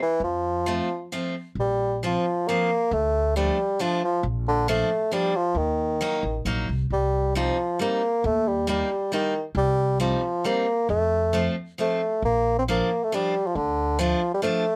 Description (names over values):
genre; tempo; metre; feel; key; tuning
alpine folk, alpine dance band; 135 BPM; 3/4; straight; Bb major; A4 = 440 Hz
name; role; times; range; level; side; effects
mellow bassoon; melody; 0.0-14.8 s; D3 to C4; -26 LUFS; equal; none
upright bass; bass; 0.2-14.1 s; A1 to F2; -30 LUFS; equal; none
picked steel-string acoustic guitar; accompaniment; 0.7-14.6 s; F3 to Eb4; -30 LUFS; equal; none
room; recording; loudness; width
light reverb; none; -24 LUFS; mono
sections
0.0-1.6 A section; 1.6-14.8 B section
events
none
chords
0.2 F; 1.6 Bbsus2; 2.9 Dm; 4.2 Bb; 5.6 Ebm; 6.9 Cm; 8.2 Eb; 9.6 Cm7; 10.9 F; 12.2 Bb; 13.6 Dm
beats
| 0.23 0.67 1.12 | 1.58 2.03 2.48 | 2.92 3.36 3.80 | 4.24 4.68 5.12 | 5.56 6.01 6.46 | 6.91 7.35 7.80 | 8.24 8.69 9.12 | 9.56 10.00 10.44 | 10.89 11.34 11.78 | 12.24 12.68 13.12 | 13.56 14.00 14.44